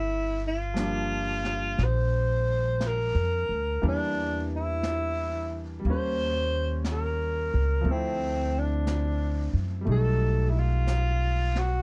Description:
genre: jazz ballad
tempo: 59 BPM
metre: 4/4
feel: swing 68% on 8ths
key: unclear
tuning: A4 = 438 Hz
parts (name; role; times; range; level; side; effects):
- breathy alto saxophone; melody; 0.0-11.8 s; C4 to C5; -32 LUFS; equal; none
- bright grand piano; accompaniment; 0.0-11.8 s; E3 to A4; -37 LUFS; equal; none
- upright bass; bass; 0.0-11.8 s; G1 to F#2; -30 LUFS; equal; none
- jazz brush drum kit; drums; 0.8-11.8 s; brushed snare drum, hi-hat, snare drum; -44 LUFS; equal; vintage 12-bit sampler grit
room: little or no reverb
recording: dark, warm production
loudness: -27 LUFS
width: mono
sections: 0.0-11.8 A section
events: none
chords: 0.0 Gm7; 3.8 Em7b5; 5.8 Eb7; 7.9 Dm9; 9.9 B7b13

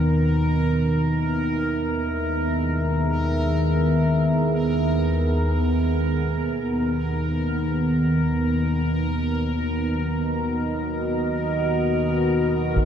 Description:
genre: dark ambient drone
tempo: free time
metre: none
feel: none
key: unclear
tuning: A4 = 440 Hz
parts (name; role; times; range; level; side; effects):
- deep dark ambient pad; sustained chords; 0.0-12.8 s; B3 to E5; -25 LUFS; right 1 dB; chorus, built-in reverb, shimmer reverb
- analog drone; drone; 0.0-12.8 s; D#2 to D#3; -22 LUFS; equal; chorus
- bubbling stepped-filter texture; texture; 0.0-12.8 s; Bb4; -30 LUFS; equal; chorus, built-in reverb, shimmer reverb
- taiko ensemble; percussion; 12.8 s; none; -19 LUFS; equal; low-pass filter on perc
room: wet cathedral reverb, RT60 6.8 s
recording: none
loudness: -20 LUFS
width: side -8 dB against mid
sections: 0.0-12.8 A section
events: fade-in on drum 0.0-12.8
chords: 0.0 E; 7.0 B

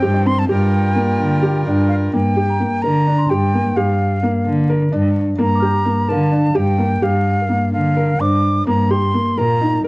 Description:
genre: contemporary instrumental, chamber music in an uneven meter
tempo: 257 BPM (eighths)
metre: 7/8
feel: straight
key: G minor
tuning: A4 = 444 Hz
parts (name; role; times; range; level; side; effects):
- silver concert flute; melody; 0.0-9.8 s; F5 to D6; -21 LUFS; equal; none
- accordion; sustained chords; 0.0-2.1 s; Eb3 to Bb4; -25 LUFS; right 1 dB; none
- felt-muted upright piano; arpeggios; 0.0-9.9 s; Bb3 to Bb4; -19 LUFS; equal; none
- dark cello; bass; 0.0-9.9 s; G2 to D3; -17 LUFS; equal; none
- celesta; texture; 0.1-8.9 s; Bb4 to G6; -31 LUFS; equal; none
room: light reverb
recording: worn, warbling old tape, cassette tape, vinyl crackle, warbly pitch drift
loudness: -14 LUFS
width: side -24 dB against mid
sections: 0.0-2.1 A section; 2.1-9.9 B section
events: none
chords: 0.5 Gm7; 8.7 Eb5/G

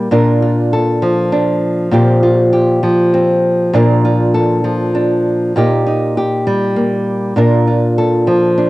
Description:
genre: folk, solo fingerstyle acoustic guitar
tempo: 66 BPM (dotted quarters)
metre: 6/8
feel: straight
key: Bb major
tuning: A4 = 441 Hz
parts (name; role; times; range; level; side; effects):
- nylon-string guitar; solo; 0.0-8.7 s; Bb2 to Bb4; -11 LUFS; equal; none
room: moderate booth ambience, RT60 0.2 s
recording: home recording on cassette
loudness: -11 LUFS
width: side -18 dB against mid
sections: 0.0-8.7 A section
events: none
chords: 0.1 Bb; 1.9 Fsus2/Bb; 3.7 Bb; 5.6 Eb/Bb; 7.4 Bb

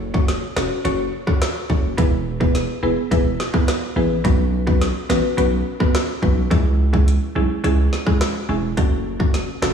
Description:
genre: dancehall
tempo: 106 BPM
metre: 4/4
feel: straight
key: E major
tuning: A4 = 440 Hz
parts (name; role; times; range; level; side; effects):
- mallet-like synth pluck; accompaniment; 0.0-9.7 s; G#3 to C#5; -22 LUFS; right 1 dB; chorus
- hard-hitting 808-style bass; bass; 0.0-9.7 s; E1 to C#2; -21 LUFS; equal; none
- island pop drum kit; drums; 0.1-9.7 s; hi-hat, kick drum, rim click, snare drum; -20 LUFS; left 1 dB; none
room: light reverb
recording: played on a big sound system in a bare room, stone room reverb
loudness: -17 LUFS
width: side -7 dB against mid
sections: 0.0-9.7 A section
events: none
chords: 0.0 F#m; 2.0 E; 4.2 Bsus2; 6.5 C#m; 8.8 F#m

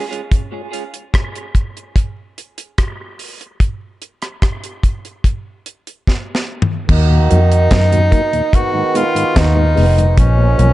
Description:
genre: dub reggae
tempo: 73 BPM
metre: 4/4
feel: straight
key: Eb minor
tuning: A4 = 440 Hz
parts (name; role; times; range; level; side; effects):
- deep reggae drum kit; drums; 0.1-10.7 s; crash cymbal, hi-hat, kick drum, rim click, snare drum, toms; -16 LUFS; equal; none
- breathy tenor saxophone; melody; 6.9-10.7 s; Db4 to Gb4; -17 LUFS; equal; tape echo
- muted trombone section; second line; 6.9-10.7 s; Eb3 to Gb4; -21 LUFS; right 5 dB; tape echo
- vintage muted fingered electric bass; bass; 6.9-10.7 s; F1 to Gb2; -12 LUFS; equal; none
- mellow tonewheel organ; accompaniment; 7.1-10.7 s; Eb2 to Eb4; -22 LUFS; left 2 dB; overdrive, chorus vibrato, slow rotary speaker, high-pass filter, tape echo
room: light reverb, small room ambience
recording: echo-heavy mix, nothing above 10.5 kHz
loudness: -13 LUFS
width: side -16 dB against mid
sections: 0.0-6.9 A section; 6.9-10.7 B section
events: drum fill 6.1-6.9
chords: 0.3 N.C.; 6.9 Ebm; 8.5 Abm; 10.2 Bbm

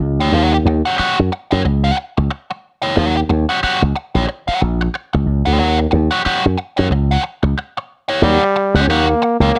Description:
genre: funk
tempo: 91 BPM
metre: 4/4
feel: swing 60% on 16ths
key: Eb mixolydian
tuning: A4 = 440 Hz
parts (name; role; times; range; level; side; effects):
- slap bass with an envelope filter; bass; 0.0-9.5 s; Bb1 to F#2; -17 LUFS; equal; none
- overdriven electric guitar; accompaniment; 0.2-9.6 s; G4 to G5; -20 LUFS; equal; wah
- bright trombone; melody; 8.2-9.6 s; G3 to Db4; -17 LUFS; equal; none
room: light reverb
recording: none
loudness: -16 LUFS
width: mono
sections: 0.0-8.2 A section; 8.2-9.6 B section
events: none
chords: 0.0 Eb7#9

